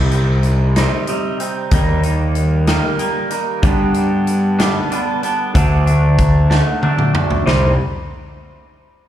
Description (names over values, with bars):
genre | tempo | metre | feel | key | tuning
quiet-loud alternative rock | 63 BPM (dotted quarters) | 6/8 | straight | C minor | A4 = 440 Hz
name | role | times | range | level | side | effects
twangy electric guitar | arpeggios | 0.0-7.7 s | G2 to Eb4 | -20 LUFS | right 2 dB | phaser, slapback echo
fuzz picked electric bass | bass | 0.0-7.8 s | C2 to G2 | -14 LUFS | equal | overdrive
big rock drum kit | drums | 0.1-7.6 s | hi-hat, kick drum, snare drum, toms | -19 LUFS | equal | none
room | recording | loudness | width
studio ambience | live gig heard through the venue's PA, club reverb | -13 LUFS | side -11 dB against mid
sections
0.0-7.5 A section; 7.5-9.1 B section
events
drum fill 6.5-7.5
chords
0.0 Cm; 1.7 Eb; 3.6 G; 5.6 D; 7.5 Cm